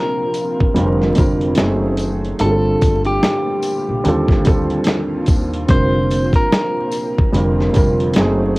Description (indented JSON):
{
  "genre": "lo-fi hip hop",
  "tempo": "73 BPM",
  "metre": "4/4",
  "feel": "swing 60% on 16ths",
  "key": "Bb major",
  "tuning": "A4 = 443 Hz",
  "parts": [
    { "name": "clean electric guitar", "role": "melody", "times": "0.0-8.1 s", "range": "G4 to C5", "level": "-21 LUFS", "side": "equal", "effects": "low-pass filter, cassette tape, tape echo" },
    { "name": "felt-muted upright piano", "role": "accompaniment", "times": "0.0-8.6 s", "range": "Eb2 to Bb4", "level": "-18 LUFS", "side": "right 1 dB", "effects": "cassette tape, low-pass filter" },
    { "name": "string machine, cellos", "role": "sustained chords", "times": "0.0-8.6 s", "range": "C3 to F#4", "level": "-26 LUFS", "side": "equal", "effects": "ensemble chorus, low-pass filter, cassette tape" },
    { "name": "dusty soul sampler-style drum kit", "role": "drums", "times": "0.3-8.6 s", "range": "hi-hat, kick drum, snare drum", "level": "-16 LUFS", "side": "equal", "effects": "cassette tape" },
    { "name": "tambourine", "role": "percussion", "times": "0.3-8.0 s", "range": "none", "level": "-38 LUFS", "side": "left 4 dB", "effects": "none" },
    { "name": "upright bass", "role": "bass", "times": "0.6-8.6 s", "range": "F1 to Eb2", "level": "-21 LUFS", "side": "equal", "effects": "none" }
  ],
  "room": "light reverb",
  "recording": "home recording on cassette, vinyl crackle",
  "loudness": "-14 LUFS",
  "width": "side -22 dB against mid",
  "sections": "0.0-8.6 A section",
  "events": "none",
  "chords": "0.0 Bbadd9; 1.6 F#dim7; 2.4 Gm9; 4.0 Eb69; 5.7 Bbadd9/F"
}